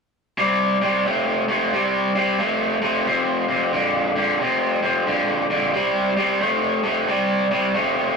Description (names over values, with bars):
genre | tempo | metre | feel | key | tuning
blues | 90 BPM | 4/4 | swing 64% on 8ths | unclear | A4 = 439 Hz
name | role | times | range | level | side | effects
raw garage guitar | solo | 0.4-8.1 s | F2 to A3 | -18 LUFS | equal | overdrive
room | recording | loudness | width
wet booth ambience, RT60 0.2 s | rough rehearsal-room recording | -18 LUFS | side -4 dB against mid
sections
0.4-8.2 A section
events
none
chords
0.4 C5; 3.1 F5; 5.7 C5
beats
| 0.39 1.05 1.72 2.39 | 3.06 3.73 4.40 5.07 | 5.74 6.41 7.08 7.75